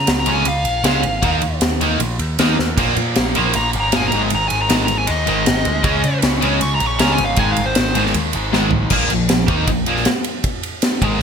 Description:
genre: hard rock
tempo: 156 BPM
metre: 4/4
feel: straight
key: unclear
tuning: A4 = 442 Hz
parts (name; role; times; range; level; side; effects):
- dark smooth lead guitar; melody; 0.0-8.0 s; C5 to Db6; -21 LUFS; equal; overdrive, digital delay
- growling picked electric bass; bass; 0.0-11.2 s; G1 to Db3; -22 LUFS; equal; overdrive
- big rock drum kit; drums; 0.1-11.1 s; crash cymbal, kick drum, ride cymbal, snare drum, toms; -19 LUFS; equal; gated reverb
- cranked stack guitar; riff; 0.3-11.2 s; Ab2 to Eb4; -23 LUFS; left 11 dB; overdrive, wide subtle chorus
- cranked stack guitar; riff; 0.3-11.2 s; Ab2 to Eb4; -23 LUFS; right 11 dB; overdrive, analog chorus
- high-gain distorted guitar; riff; 2.8-8.9 s; Ab2 to Db4; -25 LUFS; left 1 dB; distortion
room: moderate plate reverb, RT60 2.0 s, studio reverb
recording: bright 1980s-style digital production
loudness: -15 LUFS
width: side -7 dB against mid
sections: 0.0-8.9 A section; 8.9-11.2 B section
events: lead electric guitar solo 0.0-8.9; drum fill 2.6, 8.5-8.9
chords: 0.0 Db; 1.2 Eb5; 2.8 Bb5; 4.1 Ab5; 5.9 Dbsus2; 7.4 Ab; 8.9 Bb5

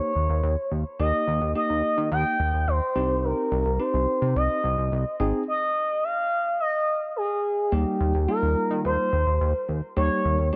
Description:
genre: synth-pop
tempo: 107 BPM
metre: 4/4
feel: straight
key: Eb mixolydian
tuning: A4 = 436 Hz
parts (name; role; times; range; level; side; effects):
- expressive portamento lead; melody; 0.0-10.6 s; G4 to G5; -27 LUFS; equal; chorus, tape echo
- tine electric piano; accompaniment; 0.0-10.6 s; G3 to Ab4; -32 LUFS; equal; none
- chorused synth bass; bass; 0.2-10.5 s; Ab1 to Eb3; -27 LUFS; equal; none
room: light reverb, digital ambience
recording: none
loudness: -25 LUFS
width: mono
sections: 0.0-7.7 A section; 7.7-10.6 A section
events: none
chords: 0.0 Eb; 3.0 Cm; 5.2 Ab; 7.7 Eb

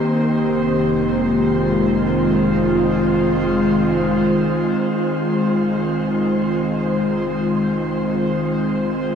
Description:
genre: ambient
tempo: 51 BPM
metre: 4/4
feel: straight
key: F minor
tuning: A4 = 439 Hz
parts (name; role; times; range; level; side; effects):
- airy breathy pad; sustained chords; 0.0-9.2 s; Eb3 to C5; -16 LUFS; equal; chorus
- warm sub bass; bass; 0.0-9.2 s; F1; -31 LUFS; equal; none
room: wet shimmer reverb, RT60 7.2 s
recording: studio reverb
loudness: -16 LUFS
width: side -7 dB against mid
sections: 0.0-4.8 A section; 4.8-9.2 B section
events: none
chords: 0.1 Fm7

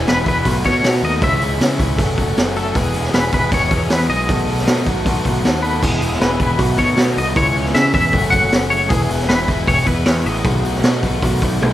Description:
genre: indie rock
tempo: 156 BPM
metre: 4/4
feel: straight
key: E major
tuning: A4 = 440 Hz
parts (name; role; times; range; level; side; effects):
- twangy electric guitar; melody; 0.0-11.6 s; G#4 to F#5; -20 LUFS; left 2 dB; tremolo, slapback echo
- mellow tine electric piano; second line; 0.0-11.7 s; E4 to B4; -29 LUFS; right 2 dB; medium stereo tremolo
- soft string machine; sustained chords; 0.0-11.7 s; A4 to D#6; -31 LUFS; equal; none
- biting overdriven guitar; riff; 0.0-11.7 s; F#2 to A4; -27 LUFS; right 6 dB; wide subtle chorus
- overdriven semi-hollow guitar; riff; 0.0-11.7 s; E2 to G#4; -23 LUFS; left 6 dB; none
- growling picked electric bass; bass; 0.0-11.7 s; E1 to C#3; -21 LUFS; equal; overdrive
- raw garage drum kit; drums; 0.1-11.7 s; crash cymbal, hi-hat, kick drum, snare drum, toms; -18 LUFS; equal; none
room: little or no reverb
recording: rough home demo mix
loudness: -14 LUFS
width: side -13 dB against mid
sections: 0.0-11.7 A section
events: none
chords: 0.5 B7; 1.2 C#m7; 2.0 F#m7; 2.8 Emaj7; 4.3 B7; 5.8 Emaj7; 6.6 B7; 7.4 C#m7; 8.1 F#m7; 8.9 Emaj7; 10.4 B7

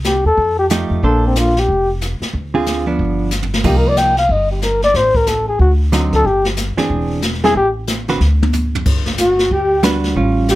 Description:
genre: jazz, small-group swing and bop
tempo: 184 BPM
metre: 4/4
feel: swing 62% on 8ths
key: G minor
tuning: A4 = 437 Hz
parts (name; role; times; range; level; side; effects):
- upright bass; bass; 0.0-10.6 s; E1 to F2; -18 LUFS; equal; none
- jazz brush drum kit; drums; 0.0-10.6 s; brushed snare drum, crash cymbal, hi-hat, kick drum, ride cymbal, snare drum, toms; -20 LUFS; equal; none
- breathy flugelhorn; melody; 0.1-10.6 s; C4 to G5; -15 LUFS; left 2 dB; none
- hollow-body jazz guitar; accompaniment; 0.7-10.6 s; D3 to C5; -17 LUFS; right 2 dB; none
- mellow alto saxophone; second line; 9.2-10.6 s; F#4 to G4; -18 LUFS; right 2 dB; none
room: light reverb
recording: none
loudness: -13 LUFS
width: side -16 dB against mid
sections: 0.0-8.9 A section; 8.9-10.6 B section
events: drum fill 3.3-3.6, 8.2-8.9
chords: 0.4 F9; 1.0 Bbmaj9; 2.3 Dm7b5; 3.0 G7; 3.6 Cm7; 5.0 Am; 5.6 D7b9; 6.3 G5; 6.9 E7alt; 7.6 Am; 8.2 N.C.; 8.9 Gmaj7

